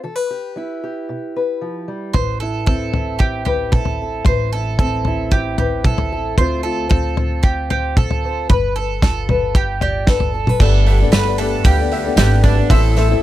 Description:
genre	indie folk with a building arrangement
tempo	114 BPM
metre	4/4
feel	straight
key	A minor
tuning	A4 = 438 Hz
part	fingerpicked acoustic archtop guitar	accompaniment	0.0-10.6 s	A2 to D5	-23 LUFS	left 3 dB	none
part	bowl-back mandolin	arpeggios	2.1-13.2 s	D4 to C5	-23 LUFS	right 7 dB	none
part	upright bass	bass	2.1-13.1 s	G1 to D2	-19 LUFS	equal	none
part	loose indie drum kit	drums	2.1-13.1 s	crash cymbal, hi-hat, kick drum, snare drum, toms	-17 LUFS	equal	none
part	bright grand piano	accompaniment	10.6-13.2 s	A1 to F5	-22 LUFS	right 1 dB	none
part	picked steel-string acoustic guitar	accompaniment	10.6-13.2 s	A2 to A4	-21 LUFS	left 10 dB	none
part	tambourine	percussion	11.1-12.3 s	none	-30 LUFS	left 10 dB	none
room	little or no reverb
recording	dry, close 1970s-style studio recording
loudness	-15 LUFS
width	side -14 dB against mid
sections	0.0-10.6 A section; 10.6-13.2 B section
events	none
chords	0.0 Em; 2.1 Amadd9; 6.4 Dm7; 8.5 G7; 10.6 Gadd9; 12.7 Am

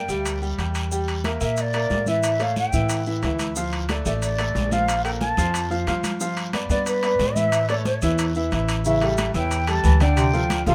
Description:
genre	latin, salsa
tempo	182 BPM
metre	4/4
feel	straight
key	unclear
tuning	A4 = 439 Hz
part	mellow jazz flute	melody	0.0-10.7 s	B4 to A5	-27 LUFS	equal	none
part	bright upright piano	accompaniment	0.0-10.7 s	D3 to G5	-28 LUFS	equal	none
part	upright bass	bass	0.0-10.7 s	A1 to Bb2	-27 LUFS	equal	none
part	guiro	percussion	0.1-10.7 s	none	-39 LUFS	equal	none
part	maracas	percussion	0.1-10.7 s	none	-38 LUFS	equal	none
part	congas	percussion	0.3-10.7 s	none	-33 LUFS	equal	none
part	timbales	percussion	0.3-10.7 s	none	-35 LUFS	equal	none
part	warm bass clarinet	second line	8.8-10.7 s	A2 to E3	-28 LUFS	equal	none
room	light reverb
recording	none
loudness	-22 LUFS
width	mono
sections	0.0-8.9 A section; 8.9-10.7 B section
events	none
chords	0.0 G5; 0.9 Edim; 2.2 A; 3.6 Dm; 4.9 Bb5; 6.2 G7; 7.5 A; 8.9 A7; 10.2 Dm7

